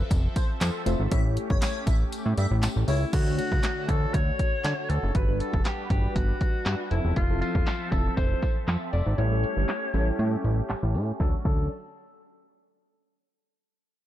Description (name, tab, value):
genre	dance-pop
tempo	119 BPM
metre	4/4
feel	straight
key	D major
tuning	A4 = 440 Hz
part	filtered supersaw swell	sustained chords	0.0-11.4 s	D3 to E5	-36 LUFS	equal	phaser, sidechain pumping
part	fat analog bass	bass	0.0-11.7 s	E1 to D3	-26 LUFS	equal	sidechain pumping
part	punchy analog drum machine	drums	0.1-11.6 s	crash cymbal, handclaps, hi-hat, kick drum, snare drum	-26 LUFS	equal	none
part	tambourine	percussion	0.1-3.0, 7.4-11.7 s	none	-46 LUFS	left 5 dB	none
part	airy dreamy lead	melody	0.4-3.0 s	C5 to E5	-37 LUFS	left 2 dB	chorus, sidechain pumping, tape echo
part	soft electric-piano-like synth keys	accompaniment	0.9-11.7 s	F3 to E5	-34 LUFS	equal	chorus, phaser
part	warm alto saxophone	melody	2.9-11.7 s	E4 to D5	-32 LUFS	left 1 dB	tape echo
room	little or no reverb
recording	dark, warm production, low-pass filter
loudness	-23 LUFS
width	side -13 dB against mid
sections	0.0-3.1 A section; 3.1-11.2 B section; 11.2-13.2 C section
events	drop 0.0-3.1; kick muted 2.1-3.1, 9.2-11.2; filter sweep 3.1-11.2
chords	0.0 Fmaj7; 1.1 A7; 3.1 Dmaj7; 5.1 Gmaj7; 6.9 Fmaj7; 9.2 A7; 11.2 Dmaj7